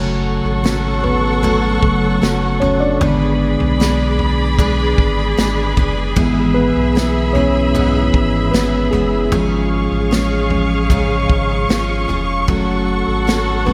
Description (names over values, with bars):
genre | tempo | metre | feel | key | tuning
pop ballad | 76 BPM | 4/4 | straight | F# minor | A4 = 440 Hz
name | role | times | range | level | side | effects
mellow tine electric piano | accompaniment | 0.0-13.7 s | C#3 to D5 | -21 LUFS | equal | none
rich studio string section | sustained chords | 0.0-13.7 s | G#4 to C#6 | -24 LUFS | equal | none
picked steel-string acoustic guitar | arpeggios | 0.0-13.7 s | G#2 to B4 | -24 LUFS | equal | tape echo
warm sub bass | bass | 0.0-13.7 s | E#1 to B1 | -23 LUFS | equal | none
natural country drum kit | drums | 0.7-13.7 s | kick drum, snare drum, toms | -22 LUFS | equal | none
room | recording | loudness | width
moderate lush hall reverb, RT60 2.5 s | dreamy mix soaked in reverb | -16 LUFS | mono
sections
0.0-13.7 A section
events
tine electric piano solo 0.0-13.7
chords
0.0 F#m; 3.0 G#dim; 6.2 E/G#; 9.3 C#/G#; 12.5 F#m